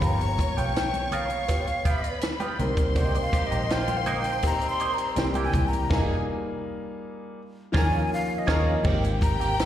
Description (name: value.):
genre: lush 1970s-style soul.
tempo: 82 BPM.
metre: 4/4.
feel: straight.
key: unclear.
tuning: A4 = 440 Hz.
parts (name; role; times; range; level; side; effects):
breathy jazz flute; melody; 0.0-9.7 s; C5 to C6; -29 LUFS; left 1 dB; plate reverb, slapback echo.
warm symphonic string section; second line; 0.0-9.7 s; G4 to Db6; -33 LUFS; equal; plate reverb, slapback echo.
dark grand piano; accompaniment; 0.0-9.7 s; E3 to Bb4; -32 LUFS; left 2 dB; plate reverb, slapback echo.
clean electric guitar; riff; 0.0-9.5 s; Bb3 to A#4; -33 LUFS; right 5 dB; wah, slapback echo.
vintage muted fingered electric bass; bass; 0.0-9.7 s; F1 to Eb2; -28 LUFS; equal; none.
compact cocktail drum kit; drums; 0.0-9.7 s; crash cymbal, hi-hat, kick drum, snare drum; -27 LUFS; equal; none.
congas; percussion; 0.0-9.4 s; none; -37 LUFS; right 3 dB; slapback echo.
warm horn section; stabs; 3.3-5.5 s; Eb3 to G4; -35 LUFS; left 2 dB; plate reverb, slapback echo.
room: light reverb.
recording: live gig heard through the venue's PA, recital hall reverb.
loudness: -23 LUFS.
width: side -11 dB against mid.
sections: 0.0-8.8 A section.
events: flute solo 0.0-8.8; band accent 5.9-8.8.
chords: 0.0 G7alt; 2.6 Cm7; 5.2 C7; 5.9 Fm11; 7.4 Eb9sus4; 8.8 Abmaj9.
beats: | 0.02 0.76 1.49 2.23 | 2.96 3.70 4.43 5.17 | 5.90 6.64 7.38 8.11 | 8.85 9.58.